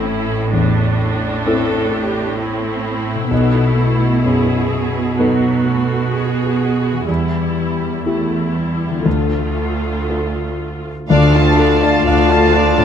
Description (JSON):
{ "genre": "cinematic, emotional film score for orchestra", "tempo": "63 BPM", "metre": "4/4", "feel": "rubato", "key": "D dorian", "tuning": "A4 = 441 Hz", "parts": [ { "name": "dark grand piano", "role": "accompaniment", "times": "0.0-12.8 s", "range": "A1 to F5", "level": "-20 LUFS", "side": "left 2 dB", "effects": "none" }, { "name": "rich symphonic viola section", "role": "accompaniment", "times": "0.0-12.8 s", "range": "F#3 to A4", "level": "-22 LUFS", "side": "right 2 dB", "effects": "none" }, { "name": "concert harp", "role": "arpeggios", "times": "0.0-12.8 s", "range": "A2 to A5", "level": "-23 LUFS", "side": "left 13 dB", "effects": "none" }, { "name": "rich symphonic cello section", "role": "bass", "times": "0.0-12.8 s", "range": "D2 to B2", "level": "-18 LUFS", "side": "right 3 dB", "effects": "none" }, { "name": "rich symphonic violin section", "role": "melody", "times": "11.1-12.8 s", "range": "F5 to A5", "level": "-19 LUFS", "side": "left 3 dB", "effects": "none" }, { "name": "clear clarinet", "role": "second line", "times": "11.1-12.8 s", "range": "F4", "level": "-24 LUFS", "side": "equal", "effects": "none" }, { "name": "clear oboe", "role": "second line", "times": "11.1-12.8 s", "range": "D5", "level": "-24 LUFS", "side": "right 3 dB", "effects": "none" }, { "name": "rich chamber violin section", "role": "second line", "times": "11.1-12.8 s", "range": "D5 to F5", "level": "-23 LUFS", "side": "right 1 dB", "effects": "none" }, { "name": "silver concert flute", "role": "second line", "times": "11.1-12.8 s", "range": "A5", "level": "-22 LUFS", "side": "left 1 dB", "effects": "none" }, { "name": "mellow French horn section", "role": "sustained chords", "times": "11.1-12.8 s", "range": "A3 to F4", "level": "-21 LUFS", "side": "left 4 dB", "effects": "none" }, { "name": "rich symphonic double bass section", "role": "bass", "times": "11.1-12.8 s", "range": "D2", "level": "-18 LUFS", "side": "right 4 dB", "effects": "none" } ], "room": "light reverb", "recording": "close, detailed microphones", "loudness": "-14 LUFS", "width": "side -8 dB against mid", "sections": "0.0-11.1 A section; 11.1-12.8 A section", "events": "none", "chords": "0.0 Am; 3.3 B7; 7.1 Em; 9.1 Dm" }